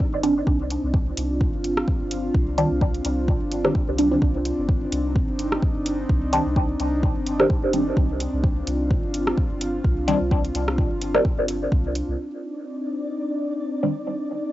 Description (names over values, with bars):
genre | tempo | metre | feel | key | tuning
dub techno | 128 BPM | 4/4 | swing 56% on 16ths | C minor | A4 = 440 Hz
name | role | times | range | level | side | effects
airy breathy pad | sustained chords | 0.0-14.5 s | C4 to F4 | -26 LUFS | equal | chorus, sidechain pumping, cassette tape
electronic kick drum | drums | 0.0-11.8 s | none | -22 LUFS | equal | studio reverb, cassette tape
soft dub sub bass | bass | 0.1-12.2 s | G1 to C2 | -29 LUFS | equal | sidechain pumping
filtered dub chord stab | stabs | 0.2-13.9 s | Eb3 to D4 | -23 LUFS | equal | phaser, sidechain pumping, cassette tape, dub echo
deep house drum kit | drums | 0.2-12.1 s | hi-hat, rim click | -28 LUFS | equal | studio reverb, cassette tape
flickering grainy texture | texture | 12.5-14.5 s | D5 | -35 LUFS | right 2 dB | built-in reverb, sidechain pumping, cassette tape
room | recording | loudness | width
moderate booth ambience, RT60 0.3 s | home recording on cassette, nothing above 7.8 kHz | -20 LUFS | side -15 dB against mid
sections
0.0-12.2 A section; 12.2-14.5 B section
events
filter sweep on synth stab 0.0-12.2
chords
0.0 Cmadd9